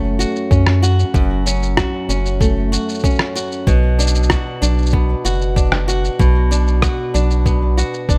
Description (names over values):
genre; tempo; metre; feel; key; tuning
folktronica; 95 BPM; 4/4; straight; unclear; A4 = 440 Hz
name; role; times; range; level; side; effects
flamenco guitar; arpeggios; 0.0-8.2 s; F#2 to F#4; -23 LUFS; equal; digital delay
round analog bass; bass; 0.0-8.2 s; F#1 to F#2; -18 LUFS; equal; none
electronic shaker and rim click; drums; 0.2-8.2 s; none; -24 LUFS; equal; studio reverb
electronic kick drum; drums; 0.5-8.2 s; none; -19 LUFS; equal; studio reverb
room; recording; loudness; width
little or no reverb; none; -16 LUFS; mono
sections
0.0-8.2 A section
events
none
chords
0.0 F#m; 3.7 Bm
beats
0.51 | 1.14 1.77 2.41 3.04 | 3.67 4.30 4.93 5.56 | 6.20 6.83 7.46 8.09